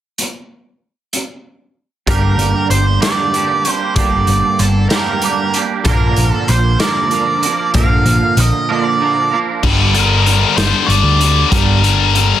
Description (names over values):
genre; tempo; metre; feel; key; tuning
quiet-loud alternative rock; 64 BPM (dotted quarters); 6/8; straight; G minor; A4 = 438 Hz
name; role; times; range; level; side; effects
raw garage drum kit; drums; 0.2-12.3 s; crash cymbal, hi-hat, kick drum, snare drum; -18 LUFS; equal; none
octave-fuzz lead guitar; melody; 2.1-12.4 s; A4 to F5; -18 LUFS; right 2 dB; distortion
twangy electric guitar; arpeggios; 2.1-12.4 s; G2 to Bb4; -19 LUFS; right 6 dB; ensemble chorus
hollow-body short-scale picked electric bass; bass; 2.1-12.3 s; G1 to D2; -15 LUFS; equal; none
scooped high-gain guitar; riff; 9.6-12.4 s; G2 to G3; -14 LUFS; left 11 dB; distortion
room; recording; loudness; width
light reverb, small room ambience; dense, heavily limited modern master; -12 LUFS; side -11 dB against mid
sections
0.2-2.1 A section; 2.1-9.6 B section; 9.6-12.4 C section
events
break 8.7-9.6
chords
0.2 N.C.; 2.1 Gm; 5.9 Bb; 9.6 Gm